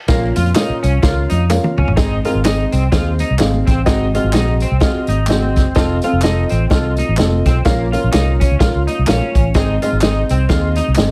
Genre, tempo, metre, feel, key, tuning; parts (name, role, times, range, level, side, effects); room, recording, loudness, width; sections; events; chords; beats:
uptempo 1960s-style soul; 127 BPM; 4/4; swing 59% on 8ths; Ab major; A4 = 440 Hz
dark grand piano; accompaniment; 0.1-11.1 s; Ab2 to F5; -22 LUFS; equal; plate reverb
electric guitar through a small old amp; riff; 0.1-10.9 s; Bb3 to F4; -26 LUFS; equal; analog chorus
vintage muted fingered electric bass; bass; 0.1-11.1 s; F1 to F2; -19 LUFS; equal
vintage drum kit; drums; 0.1-11.1 s; hi-hat, kick drum, snare drum, toms; -19 LUFS; equal
congas; percussion; 0.1-11.1 s; -32 LUFS; equal
tambourine and handclaps; percussion; 0.1-11.1 s; -32 LUFS; equal
light reverb; heavily compressed radio sound; -15 LUFS; mono
0.1-2.0 A section; 2.0-11.1 B section
drum fill 1.5-2.0
0.1 Bbm; 2.0 Ab; 3.9 Ab7; 5.8 F7; 7.7 Bbm; 9.6 Ab
| 0.08 0.55 1.03 1.50 | 1.97 2.45 2.92 3.40 | 3.87 4.34 4.82 5.29 | 5.76 6.24 6.71 7.18 | 7.66 8.13 8.60 9.08 | 9.55 10.02 10.50 10.97